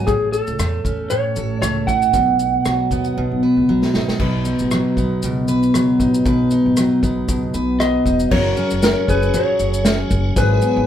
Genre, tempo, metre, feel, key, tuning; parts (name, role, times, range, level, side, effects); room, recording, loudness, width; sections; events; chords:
acoustic pop; 117 BPM; 4/4; swing 55% on 16ths; A4 = 445 Hz
electric slide guitar; melody; 0.0-3.6, 7.8-10.9 s; G#4 to F#5; -20 LUFS; right 1 dB
picked steel-string acoustic guitar; accompaniment; 0.0-10.9 s; G#2 to B4; -18 LUFS; equal
upright bass; bass; 0.0-10.9 s; E1 to E2; -24 LUFS; equal
unplugged drum kit; drums; 0.1-10.7 s; crash cymbal, kick drum, rim click, shaker, snare drum; -22 LUFS; equal
tonewheel organ; sustained chords; 8.3-10.9 s; F#3 to B4; -28 LUFS; left 4 dB; chorus vibrato, fast rotary speaker
moderate studio reverb, RT60 0.7 s; band playing live in one room; -15 LUFS; side -10 dB against mid
0.0-4.2 A section; 4.2-8.3 B section; 8.3-10.9 C section
drum fill 3.2-4.2
0.1 A; 2.1 B; 8.3 F#add9; 10.4 Eadd9/G#